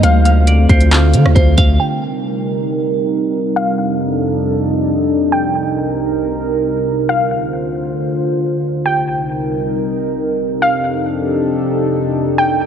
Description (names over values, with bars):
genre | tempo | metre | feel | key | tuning
hip hop, atmospheric cloud-rap | 136 BPM | 4/4 | half-time | C dorian | A4 = 440 Hz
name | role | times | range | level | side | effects
warbly dusty pluck | melody | 0.0-12.7 s | F5 to G5 | -19 LUFS | equal | chorus, low-pass filter, digital delay
warbly tape-like pad | sustained chords | 0.0-12.7 s | C2 to C5 | -16 LUFS | equal | chorus, built-in reverb, sidechain pumping, low-pass filter
semi-hollow electric guitar | arpeggios | 0.0-1.8 s | C5 to F5 | -21 LUFS | right 3 dB | phaser, digital delay
long sustained 808-style bass | bass | 0.0-1.8 s | D2 to D3 | -10 LUFS | equal | none
smooth R&B drum kit | drums | 0.0-1.7 s | handclaps, hi-hat, kick drum, rim click | -14 LUFS | equal | overdrive, vintage 12-bit sampler grit
room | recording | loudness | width
moderate huge ambient reverb, RT60 4.5 s | none | -13 LUFS | side -8 dB against mid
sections
0.0-1.8 A section; 1.8-12.7 B section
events
filter sweep 1.8-12.7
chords
0.0 Dm7; 1.8 Cm7; 3.6 F13; 5.3 Cm7; 7.1 Dm7; 8.9 Cm7; 10.6 F13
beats
| 0.03 0.47 0.92 1.36 | 1.80 2.24 2.68 3.12 | 3.56 4.00 4.44 4.88 | 5.33 5.77 6.21 6.65 | 7.09 7.53 7.97 8.41 | 8.86 9.30 9.74 10.18 | 10.62 11.06 11.50 11.94 | 12.38